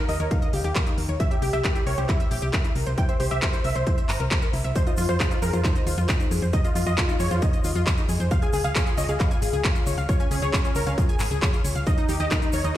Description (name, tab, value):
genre	uplifting trance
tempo	135 BPM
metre	4/4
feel	straight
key	F minor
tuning	A4 = 440 Hz
part	supersaw stab	melody	0.0-12.7 s	Db4 to G5	-29 LUFS	right 1 dB	sidechain pumping, low-pass filter, dub echo
part	analog pluck	arpeggios	0.0-12.7 s	Eb4 to Bb5	-31 LUFS	left 4 dB	chorus, sidechain pumping, tape echo
part	solid FM bass	bass	0.1-12.7 s	G1 to F2	-25 LUFS	equal	tube saturation, sidechain pumping
part	techno drum kit	drums	0.1-12.7 s	handclaps, hi-hat	-30 LUFS	equal	none
part	electronic kick drum	drums	0.3-12.4 s	none	-24 LUFS	equal	none
part	egg shaker	percussion	4.8-12.7 s	none	-41 LUFS	left 1 dB	none
room	light reverb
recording	played on a big sound system in a bare room, stone room reverb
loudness	-21 LUFS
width	side -13 dB against mid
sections	0.0-12.8 A section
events	none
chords	0.0 Eb7; 1.2 C7; 4.8 Fm7; 8.3 Db; 11.9 Eb